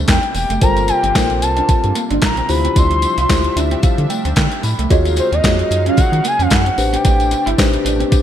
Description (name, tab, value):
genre	early-eighties boogie funk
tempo	112 BPM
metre	4/4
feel	swing 56% on 16ths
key	G dorian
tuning	A4 = 442 Hz
part	warm analog pad	sustained chords	0.0-8.2 s	B2 to F5	-27 LUFS	equal	chorus, tremolo
part	clean electric guitar	riff	0.0-8.1 s	G3 to F4	-24 LUFS	right 5 dB	lush chorus, slapback echo
part	rubbery square bass	bass	0.0-8.2 s	E1 to Eb3	-19 LUFS	equal	none
part	gliding portamento lead	melody	0.1-7.5 s	C5 to C6	-19 LUFS	equal	chorus, slapback echo
part	crisp 8-bit digital drum machine	drums	0.1-8.2 s	handclaps, hi-hat, kick drum, snare drum	-16 LUFS	equal	none
part	tambourine	percussion	0.1-8.2 s	none	-31 LUFS	left 8 dB	none
part	mellow tine electric piano	accompaniment	0.6-8.2 s	D4 to B5	-21 LUFS	left 3 dB	slapback echo
room	light reverb, digital ambience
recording	none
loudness	-13 LUFS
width	side -10 dB against mid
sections	0.0-8.2 A section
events	tine electric piano fill 3.3-4.9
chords	0.0 Am11; 0.6 Gm11; 2.5 Dm11; 4.9 Ebm11; 6.8 Am11